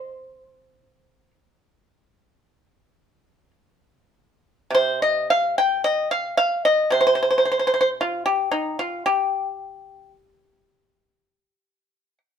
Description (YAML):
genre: chinese traditional, Chinese solo plucked strings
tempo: 51-57 BPM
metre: 4/4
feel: rubato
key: C yu mode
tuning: A4 = 438 Hz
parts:
  - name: pipa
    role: solo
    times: 0.0-12.2 s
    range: C3 to G5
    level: -19 LUFS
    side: equal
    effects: none
room: moderate studio reverb, RT60 0.8 s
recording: band playing live in one room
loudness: -19 LUFS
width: side -8 dB against mid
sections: 0.0-4.7 A section; 4.7-12.4 B section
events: none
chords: none